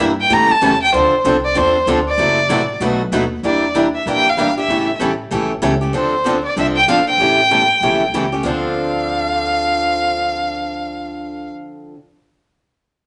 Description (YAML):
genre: acoustic string swing (jazz manouche)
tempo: 192 BPM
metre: 4/4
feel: swing 59% on 8ths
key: D minor from 3.4 s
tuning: A4 = 439 Hz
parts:
  - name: picked steel-string acoustic guitar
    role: accompaniment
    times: 0.0-12.0 s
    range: B2 to A4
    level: -23 LUFS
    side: equal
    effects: none
  - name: picked steel-string acoustic guitar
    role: accompaniment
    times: 0.0-12.0 s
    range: B2 to B4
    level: -24 LUFS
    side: equal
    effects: none
  - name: upright bass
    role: bass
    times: 0.0-11.5 s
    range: F#1 to A2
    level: -30 LUFS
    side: equal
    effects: none
  - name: warm violin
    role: melody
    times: 0.2-11.5 s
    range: C5 to Bb5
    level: -18 LUFS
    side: equal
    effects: none
room: moderate large studio reverb, RT60 0.8 s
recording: nothing above 10.7 kHz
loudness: -16 LUFS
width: mono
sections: 0.0-3.4 A section; 3.4-8.4 B section; 8.4-10.9 C section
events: none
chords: 0.3 A7; 0.9 Dm9; 2.2 F#m7b5; 2.8 B7; 3.4 Em7b5; 4.7 A7b9; 5.9 Dm7; 7.2 A7b9; 8.4 Dm7